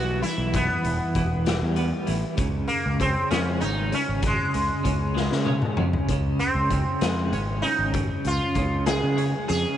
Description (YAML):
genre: psychedelic rock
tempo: 65 BPM (dotted quarters)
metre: 6/8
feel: straight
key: unclear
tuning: A4 = 441 Hz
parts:
  - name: sitar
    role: melody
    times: 0.0-9.8 s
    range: G#3 to G#4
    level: -27 LUFS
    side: right 1 dB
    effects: tape echo
  - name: twelve-string electric guitar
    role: riff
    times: 0.0-9.8 s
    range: C#3 to C#4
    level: -28 LUFS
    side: right 1 dB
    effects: tremolo, double-tracked left and right
  - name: growling fingered electric bass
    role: bass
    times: 0.0-9.6 s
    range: E1 to C#3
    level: -26 LUFS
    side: equal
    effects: overdrive
  - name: raw garage drum kit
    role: drums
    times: 0.2-9.6 s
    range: hi-hat, kick drum, snare drum, toms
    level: -28 LUFS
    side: left 3 dB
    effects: none
room: studio reverb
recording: 1960s-style stereo, nothing above 10.6 kHz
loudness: -22 LUFS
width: side -11 dB against mid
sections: 0.0-9.8 A section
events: drum fill 5.2-6.1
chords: 0.0 Em; 2.4 C#5